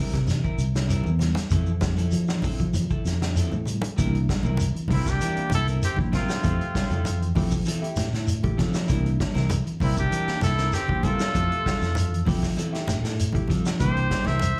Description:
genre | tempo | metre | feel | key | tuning
afrobeat | 98 BPM | 4/4 | straight | C mixolydian | A4 = 438 Hz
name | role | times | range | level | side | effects
mellow electric guitar | arpeggios | 0.0-14.6 s | D3 to G3 | -34 LUFS | equal | none
electric guitar at the edge of break-up | stabs | 0.0-14.4 s | G3 to Bb4 | -38 LUFS | equal | slapback echo
fingered electric bass | bass | 0.1-14.5 s | C2 to F3 | -27 LUFS | equal | none
vintage drum kit | drums | 0.1-14.6 s | hi-hat, kick drum, snare drum | -31 LUFS | equal | none
shekere | percussion | 0.1-14.6 s | none | -32 LUFS | equal | none
congas | percussion | 0.3-14.6 s | none | -34 LUFS | equal | slapback echo
barky tine electric piano | accompaniment | 4.0-14.1 s | A3 to E5 | -37 LUFS | equal | phaser, slapback echo
warm trumpet | melody | 4.9-14.6 s | E4 to E5 | -30 LUFS | equal | slapback echo
growling trumpet | second line | 4.9-14.6 s | C4 to C5 | -38 LUFS | equal | slapback echo
room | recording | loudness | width
little or no reverb | live gig heard through the venue's PA, club ambience | -24 LUFS | mono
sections
0.0-4.0 A section; 4.0-14.6 B section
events
none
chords
0.0 C7; 1.5 Fmaj7; 4.0 C7; 6.4 Fmaj7; 8.9 C7; 11.3 Fmaj7; 13.8 C7

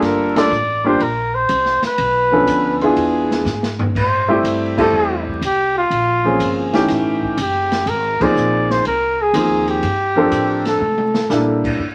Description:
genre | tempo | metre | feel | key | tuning
jazz, small-group swing and bop | 122 BPM | 4/4 | swing 68% on 8ths | unclear | A4 = 440 Hz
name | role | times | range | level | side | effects
warm flugelhorn | melody | 0.0-11.6 s | F4 to D5 | -20 LUFS | equal | none
warm upright piano | accompaniment | 0.0-11.8 s | E3 to Bb4 | -19 LUFS | equal | none
upright bass | bass | 0.0-11.9 s | Gb1 to C3 | -29 LUFS | equal | none
open jazz drum kit | drums | 0.0-11.7 s | crash cymbal, hi-hat, kick drum, ride cymbal, snare drum, toms | -28 LUFS | equal | none
room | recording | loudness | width
moderate studio reverb, RT60 0.7 s | vinyl crackle | -17 LUFS | mono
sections
0.0-11.8 A section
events
band accent 0.3, 4.7, 8.1; drum fill 3.5-4.0, 10.8-11.3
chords
0.0 Gm9; 2.0 Bm7b5; 3.0 E7b9; 4.0 Am7; 5.9 Bbm9; 6.9 A7#11; 7.9 Ab6; 9.8 Gm11; 10.8 C13

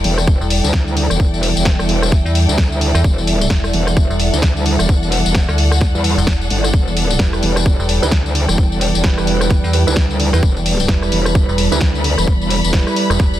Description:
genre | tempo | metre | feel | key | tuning
bass house | 130 BPM | 4/4 | swing 58% on 16ths | E minor | A4 = 439 Hz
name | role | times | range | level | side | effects
dark analog pad | sustained chords | 0.0-13.4 s | G3 to E5 | -23 LUFS | right 2 dB | chorus, sidechain pumping
metallic FM bass | bass | 0.0-13.4 s | E1 to E2 | -16 LUFS | equal | sidechain pumping
metallic wobble bass | bass | 0.0-12.8 s | E1 to E2 | -18 LUFS | equal | distortion, chorus, overdrive, sidechain pumping
house drum kit | drums | 0.0-13.4 s | hi-hat, rim click, snare drum, tambourine | -20 LUFS | left 2 dB | none
warm studio string section | texture | 0.0-13.4 s | A4 to B5 | -23 LUFS | left 4 dB | sidechain pumping
electronic kick drum | drums | 0.3-13.3 s | none | -14 LUFS | equal | overdrive
dark baby grand piano | stabs | 7.2-13.4 s | G3 to B4 | -23 LUFS | right 7 dB | sidechain pumping, tape echo
room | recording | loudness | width
little or no reverb | dense, heavily limited modern master | -13 LUFS | side -13 dB against mid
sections
0.0-13.4 A section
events
none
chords
0.0 Em

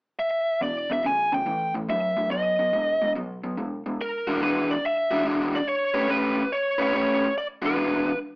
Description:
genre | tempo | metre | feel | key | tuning
blues | 142 BPM | 4/4 | swing 67% on 8ths | E mixolydian from 4.0 s | A4 = 440 Hz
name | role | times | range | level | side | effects
biting lead guitar | melody | 0.2-8.2 s | A#4 to G#5 | -24 LUFS | equal | overdrive
crunchy overdriven guitar | riff | 0.6-8.1 s | E2 to B4 | -26 LUFS | equal | none
room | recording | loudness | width
moderate studio reverb, RT60 0.7 s | band playing live in one room, small speaker sound | -22 LUFS | side -28 dB against mid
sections
0.6-4.0 A section; 4.0-8.4 B section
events
none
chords
0.0 N.C.; 0.6 E5; 1.5 A5; 2.3 B; 4.0 E9; 5.7 A9; 7.4 E9

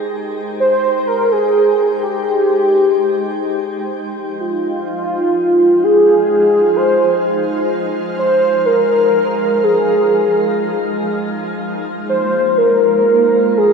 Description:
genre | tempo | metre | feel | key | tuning
ambient | free time | none | none | unclear | A4 = 440 Hz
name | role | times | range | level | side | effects
shimmering ambient pad | sustained chords | 0.0-13.7 s | F3 to G5 | -22 LUFS | equal | chorus, built-in reverb, shimmer reverb
warm velvety synth lead | melody | 0.6-13.7 s | F4 to C5 | -13 LUFS | equal | chorus, shimmer reverb, tape echo
room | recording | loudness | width
wet cathedral reverb, RT60 5.4 s | none | -12 LUFS | side -5 dB against mid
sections
0.0-13.7 A section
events
fade-in on ambient pad 0.0-13.7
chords
0.0 Abmaj7; 3.9 Fm7; 11.6 Bb7(no3)

